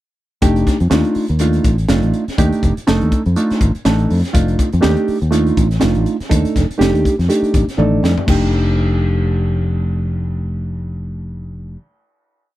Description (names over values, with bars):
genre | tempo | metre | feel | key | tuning
electric jazz fusion | 122 BPM | 4/4 | swing 56% on 16ths | F mixolydian | A4 = 441 Hz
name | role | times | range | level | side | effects
reed electric piano | accompaniment | 0.4-11.8 s | A3 to D5 | -18 LUFS | right 1 dB | phaser
fretless electric bass | bass | 0.4-11.8 s | F1 to F2 | -17 LUFS | equal | wide subtle chorus
crisp fusion drum kit | drums | 0.4-8.4 s | crash cymbal, hi-hat, kick drum, snare drum, toms | -19 LUFS | equal | none
room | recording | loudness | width
little or no reverb | none | -13 LUFS | side -15 dB against mid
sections
0.4-8.3 groove; 8.3-12.2 final chord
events
reed electric piano fill 7.5-8.3; drum fill 7.8-8.3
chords
0.4 F13